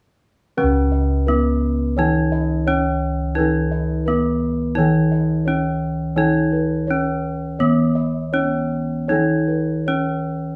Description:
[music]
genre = Javanese gamelan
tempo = 85 BPM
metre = 4/4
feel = uneven beats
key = unclear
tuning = A4 = 440 Hz
[part]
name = gamelan-type bronze metallophone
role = melody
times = 0.6-10.6 s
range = B3-40c to D#4+40c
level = -25 LUFS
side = equal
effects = none
[part]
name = gamelan-type bronze metallophone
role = accompaniment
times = 0.6-10.6 s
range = C#3 to B3-40c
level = -25 LUFS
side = equal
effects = none
[part]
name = gamelan-type bossed gongs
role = arpeggios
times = 0.6-10.3 s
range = B4-40c to D#5+40c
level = -28 LUFS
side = equal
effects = none
[part]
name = gamelan-type bossed gongs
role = bass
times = 0.6-10.0 s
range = C#2 to D#4+40c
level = -25 LUFS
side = equal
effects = none
[sound]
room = moderate studio reverb, RT60 0.7 s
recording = band playing live in one room, studio ambience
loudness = -20 LUFS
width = mono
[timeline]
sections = 0.6-10.6 A section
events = none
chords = none

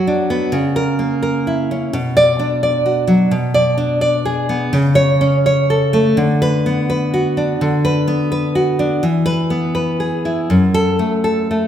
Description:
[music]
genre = romantic piece for solo classical guitar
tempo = 85 BPM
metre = 4/4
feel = uneven beats, rubato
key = unclear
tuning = A4 = 441 Hz
[part]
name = nylon-string guitar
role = solo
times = 0.0-11.7 s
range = F#2 to D5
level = -14 LUFS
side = equal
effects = none
[sound]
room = wet scoring stage reverb, RT60 1.7 s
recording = recorded in a church or concert hall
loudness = -14 LUFS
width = side -10 dB against mid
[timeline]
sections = 0.0-11.7 A section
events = none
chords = 0.0 Bm; 0.6 A#dim/C#; 1.9 Bm; 3.3 G#dim/B; 4.7 A/C#; 6.2 Bm/D; 9.0 E; 10.5 F#m

